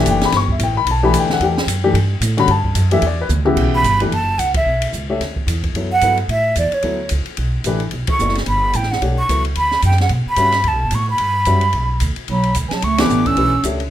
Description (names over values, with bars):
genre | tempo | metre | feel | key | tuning
modal jazz | 221 BPM | 4/4 | swing 59% on 8ths | unclear | A4 = 441 Hz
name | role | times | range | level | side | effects
warm grand piano | accompaniment | 0.0-13.8 s | C#3 to C#6 | -19 LUFS | left 4 dB | none
upright bass | bass | 0.0-13.9 s | F#1 to B2 | -19 LUFS | right 1 dB | none
open jazz drum kit | drums | 0.1-13.9 s | crash cymbal, hi-hat, kick drum, ride cymbal, snare drum, toms | -24 LUFS | equal | none
breathy hollow jazz flute | melody | 3.8-13.7 s | C#5 to E6 | -17 LUFS | right 2 dB | none
mellow bass clarinet | second line | 12.3-13.7 s | E3 to C#4 | -19 LUFS | right 3 dB | none
room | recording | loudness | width
light reverb | minimal, uncompressed stereo recording | -14 LUFS | side -11 dB against mid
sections
0.0-3.6 A section; 3.6-13.9 B section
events
drum fill 3.3; band accent 4.5, 8.1, 13.0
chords
0.0 Em11; 12.3 Bm11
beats
0.06 | 0.33 0.60 0.87 1.14 | 1.41 1.68 1.95 2.22 | 2.49 2.76 3.03 3.30 | 3.57 3.85 4.12 4.39 | 4.66 4.93 5.20 5.47 | 5.75 6.02 6.29 6.56 | 6.83 7.11 7.38 7.65 | 7.92 8.19 8.47 8.74 | 9.01 9.28 9.55 9.83 | 10.10 10.37 10.64 10.91 | 11.19 11.46 11.73 12.01 | 12.28 12.55 12.83 13.10 | 13.37 13.65